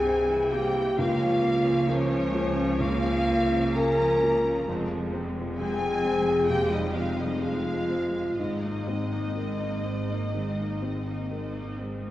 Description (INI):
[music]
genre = cinematic, emotional film score for orchestra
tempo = 61-67 BPM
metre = 4/4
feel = rubato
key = F minor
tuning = A4 = 435 Hz
[part]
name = rich symphonic violin section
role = melody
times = 0.0-11.7 s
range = Db5 to Bb5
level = -38 LUFS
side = left 1 dB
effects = none
[part]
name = clear clarinet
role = second line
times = 0.0-11.7 s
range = F3 to Db4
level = -34 LUFS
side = left 1 dB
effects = none
[part]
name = warm symphonic violin section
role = second line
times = 0.0-11.7 s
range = Db5 to Bb5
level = -37 LUFS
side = left 2 dB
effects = none
[part]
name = felt-muted upright piano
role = accompaniment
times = 0.0-12.1 s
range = Db2 to C5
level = -33 LUFS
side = left 1 dB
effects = none
[part]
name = rich symphonic viola section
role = accompaniment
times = 0.0-12.1 s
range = E3 to E4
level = -35 LUFS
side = equal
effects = none
[part]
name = mellow French horn section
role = sustained chords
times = 0.0-11.7 s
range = Db4 to Bb4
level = -27 LUFS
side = left 1 dB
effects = none
[part]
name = clear symphonic double bass section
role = bass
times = 0.0-12.0 s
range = F1 to Db2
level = -34 LUFS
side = right 2 dB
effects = none
[part]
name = rich symphonic cello section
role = bass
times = 0.0-12.0 s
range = F2 to Db3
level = -35 LUFS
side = right 2 dB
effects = none
[sound]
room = wet concert hall reverb, RT60 2.5 s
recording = worn, warbling old tape, cassette tape, warbly pitch drift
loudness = -24 LUFS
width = side -14 dB against mid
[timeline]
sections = 0.0-12.1 A section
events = none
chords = 0.0 C; 1.0 Bbm/Db; 4.7 Fm; 8.4 Abadd9